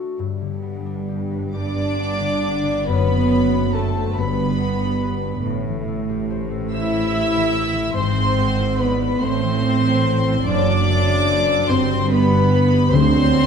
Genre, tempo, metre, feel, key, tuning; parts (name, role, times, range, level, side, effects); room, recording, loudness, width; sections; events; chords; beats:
classical; 43-49 BPM (dotted quarters); 6/8; rubato; G major; A4 = 440 Hz
concert harp; arpeggios; 0.0-13.5 s; F#2 to A5; -24 LUFS; left 10 dB
dark studio double bass section; bass; 0.2-13.5 s; F#1 to D2; -24 LUFS; right 5 dB
rich chamber cello section; bass; 0.2-13.5 s; D2 to A2; -25 LUFS; right 4 dB
warm studio violin section; melody; 1.6-13.5 s; A5 to E6; -26 LUFS; left 1 dB
warm studio violin section; second line; 1.6-13.5 s; A4 to E5; -25 LUFS; left 2 dB
rich studio viola section; accompaniment; 1.6-13.5 s; A3 to E4; -22 LUFS; right 1 dB
timpani; percussion; 12.9-13.5 s; D3; -21 LUFS; equal
moderate recital hall reverb, RT60 1.6 s; dark, warm production; -17 LUFS; side -6 dB against mid
0.2-13.5 A section
0.2 G; 2.9 D7/F#; 4.2 G; 5.5 Am7; 8.0 E7/G#; 9.2 Am; 10.5 D7/F#; 11.7 G; 12.9 D7
| 0.20 1.57 | 2.89 4.19 | 5.46 6.74 | 7.98 9.24 | 10.49 11.71 | 12.94